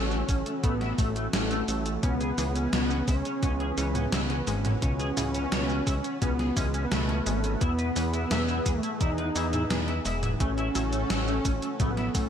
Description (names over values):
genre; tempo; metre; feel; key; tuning
synthwave; 86 BPM; 4/4; straight; C# minor; A4 = 437 Hz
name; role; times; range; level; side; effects
wide unison lead; melody; 0.0-12.3 s; G#3 to D#4; -31 LUFS; equal; ping-pong delay
warm analog pad; sustained chords; 0.0-12.3 s; E3 to B4; -36 LUFS; right 1 dB; chorus, sidechain pumping
clean electric guitar; riff; 0.0-12.2 s; A3 to E5; -36 LUFS; left 2 dB; ensemble chorus, digital delay
fat analog bass; bass; 0.0-12.3 s; E1 to A2; -30 LUFS; equal; none
gated 80s digital drum machine; drums; 0.1-12.3 s; hi-hat, shaker, snare drum, toms; -32 LUFS; equal; gated reverb, gated reverb snare
electronic kick drum; drums; 0.3-12.3 s; none; -28 LUFS; equal; none
analog pluck; arpeggios; 2.0-12.3 s; B2 to A3; -38 LUFS; left 3 dB; none
room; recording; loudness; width
light reverb; none; -25 LUFS; side -8 dB against mid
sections
0.0-12.3 A section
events
drum fill 11.8-12.3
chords
0.0 A6; 2.0 C#m7; 7.6 Emaj7; 10.4 A6